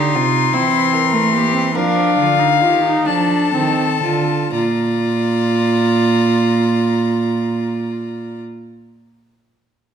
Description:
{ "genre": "classical, baroque-style fugue for string quartet", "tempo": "38-53 BPM (dotted quarters)", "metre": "6/8", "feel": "straight", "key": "Bb major", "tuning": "A4 = 440 Hz", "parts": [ { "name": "warm violin", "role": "melody", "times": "0.0-8.4 s", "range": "F5 to C6", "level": "-19 LUFS", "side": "left 8 dB", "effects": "none" }, { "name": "rich violin", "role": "second line", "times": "0.0-8.4 s", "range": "E4 to D5", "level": "-25 LUFS", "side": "left 4 dB", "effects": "none" }, { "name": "rich viola", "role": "accompaniment", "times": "0.0-8.4 s", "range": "A3 to F4", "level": "-19 LUFS", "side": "right 2 dB", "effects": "none" }, { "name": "dark cello", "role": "bass", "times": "0.0-8.4 s", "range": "Bb2 to F3", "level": "-19 LUFS", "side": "right 4 dB", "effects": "none" } ], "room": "wet recital hall reverb, RT60 1.4 s", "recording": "dark, warm production", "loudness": "-14 LUFS", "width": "side -8 dB against mid", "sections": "0.0-4.5 A section; 4.5-7.7 B section", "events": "slowing down 0.0-4.5", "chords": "0.0 Cm; 0.5 C7/E; 1.8 F7sus4; 3.1 F7; 4.5 Bb", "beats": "0.54 | 1.75 3.07 | 4.54 6.10" }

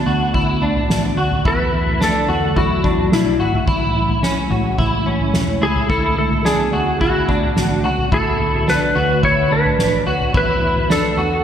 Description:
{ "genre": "dream pop", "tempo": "108 BPM", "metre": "4/4", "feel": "straight", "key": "D lydian", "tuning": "A4 = 440 Hz", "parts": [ { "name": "ethereal airy pad", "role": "sustained chords", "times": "0.0-11.4 s", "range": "C#3 to C#5", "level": "-23 LUFS", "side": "right 1 dB", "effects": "ensemble chorus, built-in reverb" }, { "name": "electric guitar at the edge of break-up", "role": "arpeggios", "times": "0.0-11.4 s", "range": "C#4 to F#4", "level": "-21 LUFS", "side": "left 1 dB", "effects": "ensemble chorus, digital delay" }, { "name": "vintage muted picked electric bass", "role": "bass", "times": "0.1-11.4 s", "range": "E1 to E2", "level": "-23 LUFS", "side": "equal", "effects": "none" }, { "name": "soft-mallet drum kit", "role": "drums", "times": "0.3-11.0 s", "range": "kick drum, snare drum, toms", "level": "-21 LUFS", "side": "equal", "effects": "gated reverb" }, { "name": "clean lap steel guitar", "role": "melody", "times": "1.5-11.4 s", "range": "E4 to C#5", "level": "-19 LUFS", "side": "left 1 dB", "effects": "lush chorus, digital delay" } ], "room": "moderate lush hall reverb, RT60 1.8 s, small room ambience", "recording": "bright 1980s-style digital production", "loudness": "-15 LUFS", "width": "side -9 dB against mid", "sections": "0.0-11.4 A section", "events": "none", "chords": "0.0 D6; 1.5 E9sus4; 3.7 Amaj7; 5.9 D6; 10.3 E9sus4", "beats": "0.34 0.90 | 1.45 2.01 2.56 3.12 | 3.67 4.23 4.79 5.34 | 5.90 6.45 7.01 7.56 | 8.12 8.67 9.23 9.79 | 10.34 10.90" }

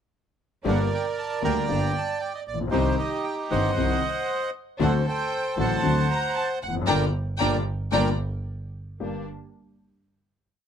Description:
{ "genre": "tango", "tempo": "115 BPM", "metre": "4/4", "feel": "rubato", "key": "G harmonic minor", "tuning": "A4 = 441 Hz", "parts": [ { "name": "warm baby grand piano", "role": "accompaniment", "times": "0.6-9.2 s", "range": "G1 to G4", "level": "-26 LUFS", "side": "left 5 dB", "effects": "none" }, { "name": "bandoneon", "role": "melody", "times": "0.7-8.1 s", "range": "Eb4 to Bb5", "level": "-27 LUFS", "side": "right 3 dB", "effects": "none" }, { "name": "warm symphonic string section", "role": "stabs", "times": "0.7-9.2 s", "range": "F#3 to Eb4", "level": "-34 LUFS", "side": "right 2 dB", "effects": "none" }, { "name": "clear double bass", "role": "bass", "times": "0.7-9.2 s", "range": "F1 to D2", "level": "-29 LUFS", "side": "right 2 dB", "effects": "none" }, { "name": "warm studio violin section", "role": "second line", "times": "4.8-8.1 s", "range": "D5 to Bb5", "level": "-29 LUFS", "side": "left 2 dB", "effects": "none" } ], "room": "moderate club reverb, RT60 0.5 s", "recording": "dark, warm production", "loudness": "-23 LUFS", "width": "side -8 dB against mid", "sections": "0.7-9.0 A section; 9.0-10.7 final chord", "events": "band accent 6.9-9.0", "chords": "0.7 Gm; 2.7 Cm; 4.8 D7; 6.9 Gm; 8.5 N.C.; 9.0 Gm", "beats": "| 0.65 1.17 1.69 2.21 | 2.73 3.25 3.76 4.28 | 4.80 5.32 5.83 6.36 | 6.88 7.40 7.93 8.46 | 9.00" }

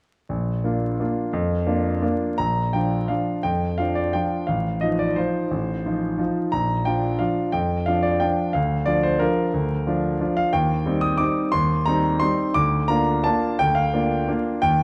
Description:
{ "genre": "classical, piano waltz", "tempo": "176 BPM", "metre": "3/4", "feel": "uneven beats, rubato", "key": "Bb major", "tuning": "A4 = 441 Hz", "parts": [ { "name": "bright concert grand piano", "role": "solo", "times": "0.3-14.8 s", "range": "A1 to Eb6", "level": "-22 LUFS", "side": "equal", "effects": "none" } ], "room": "moderate recital hall reverb, RT60 1.8 s", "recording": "vinyl crackle", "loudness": "-22 LUFS", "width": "mono", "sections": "0.3-2.4 A section; 2.4-14.8 B section", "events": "none", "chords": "0.3 Bb; 4.5 F7/A; 6.5 Bb; 8.5 Bb/D; 10.5 Cm/Eb; 12.6 Bb/D", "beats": "| 0.30 0.65 1.00 | 1.34 1.67 2.02 | 2.38 2.73 3.09 | 3.44 3.78 4.13 | 4.47 4.82 5.17 | 5.51 5.84 6.19 | 6.53 6.86 7.20 | 7.53 7.87 8.21 | 8.54 8.87 9.21 | 9.54 9.87 10.21 | 10.53 10.86 11.21 | 11.54 11.87 12.22 | 12.56 12.90 13.25 | 13.59 13.93 14.28 | 14.62" }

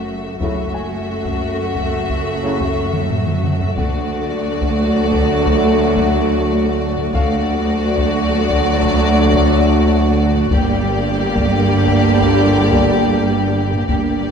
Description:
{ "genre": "cinematic, suspense film score", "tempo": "89 BPM", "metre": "5/4", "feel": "straight", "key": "unclear", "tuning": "A4 = 439 Hz", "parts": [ { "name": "clear symphonic violin section", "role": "melody", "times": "0.0-14.3 s", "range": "D5 to Fb5", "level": "-25 LUFS", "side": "left 4 dB", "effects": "none" }, { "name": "clear symphonic violin section", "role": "second line", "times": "0.0-14.3 s", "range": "Gb4 to G4", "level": "-23 LUFS", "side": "left 4 dB", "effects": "none" }, { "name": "clear symphonic viola section", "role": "accompaniment", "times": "0.0-14.3 s", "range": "A3 to Bb3", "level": "-22 LUFS", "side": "right 2 dB", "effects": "none" }, { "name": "clear symphonic cello section", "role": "bass", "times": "0.0-14.3 s", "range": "D2 to G2", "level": "-21 LUFS", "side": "right 2 dB", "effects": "none" }, { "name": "rich symphonic double bass section", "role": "bass", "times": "0.0-14.3 s", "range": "Gb1 to D2", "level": "-22 LUFS", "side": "right 2 dB", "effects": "none" }, { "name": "dark baby grand piano", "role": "texture", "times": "0.0-10.5 s", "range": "A4 to Ab5", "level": "-32 LUFS", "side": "left 4 dB", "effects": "none" }, { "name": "bright trombone section", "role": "sustained chords", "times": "0.4-14.3 s", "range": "Db3 to G3", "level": "-23 LUFS", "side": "right 3 dB", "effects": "none" }, { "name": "dark French horn section", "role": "sustained chords", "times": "0.4-14.3 s", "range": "A3 to Fb4", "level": "-22 LUFS", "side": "left 3 dB", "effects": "none" }, { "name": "taiko ensemble", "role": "drums", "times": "0.4-14.3 s", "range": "none", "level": "-24 LUFS", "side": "left 1 dB", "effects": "none" } ], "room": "moderate scoring stage reverb, RT60 1.6 s", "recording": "dark, warm production", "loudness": "-14 LUFS", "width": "side -6 dB against mid", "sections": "0.0-14.3 A section", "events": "drum fill 2.9-3.8", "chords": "0.0 Gbm7; 3.8 D; 10.5 Gm", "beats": "| 0.40 1.08 1.75 2.42 3.10 | 3.77 4.45 5.12 5.80 6.47 | 7.14 7.82 8.49 9.17 9.84 | 10.52 11.19 11.86 12.54 13.21 | 13.89" }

